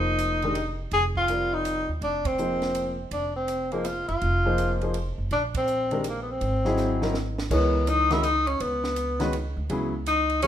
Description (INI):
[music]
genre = modal jazz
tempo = 164 BPM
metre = 3/4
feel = swing 65% on 8ths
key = F dorian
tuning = A4 = 439 Hz
[part]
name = warm tenor saxophone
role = melody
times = 0.0-10.5 s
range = Bb3 to Ab4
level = -25 LUFS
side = left 1 dB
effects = none
[part]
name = warm upright piano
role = accompaniment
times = 0.0-10.5 s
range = C#3 to D5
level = -29 LUFS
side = left 1 dB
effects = none
[part]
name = upright bass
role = bass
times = 0.0-10.5 s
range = F1 to Eb2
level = -29 LUFS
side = right 1 dB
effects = none
[part]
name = compact cocktail drum kit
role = drums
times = 0.2-10.5 s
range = crash cymbal, hi-hat, kick drum, ride cymbal, snare drum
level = -36 LUFS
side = right 3 dB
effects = none
[sound]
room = moderate large studio reverb, RT60 1.1 s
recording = minimal, uncompressed stereo recording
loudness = -23 LUFS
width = side -10 dB against mid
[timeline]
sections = 0.0-7.5 A section; 7.5-10.5 B section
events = band accent 2.2, 5.5; drum fill 6.8-7.5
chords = 0.0 Fm7; 3.1 Bbsus2/F; 6.4 Ab7b13; 7.5 C#m9; 9.7 F#5/C#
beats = 0.19 0.56 | 0.92 1.29 1.66 | 2.02 2.39 2.75 | 3.12 3.49 3.85 | 4.22 4.59 4.95 | 5.32 5.68 6.05 | 6.42 6.78 7.15 | 7.51 7.88 8.24 | 8.61 8.97 9.34 | 9.70 10.07 10.43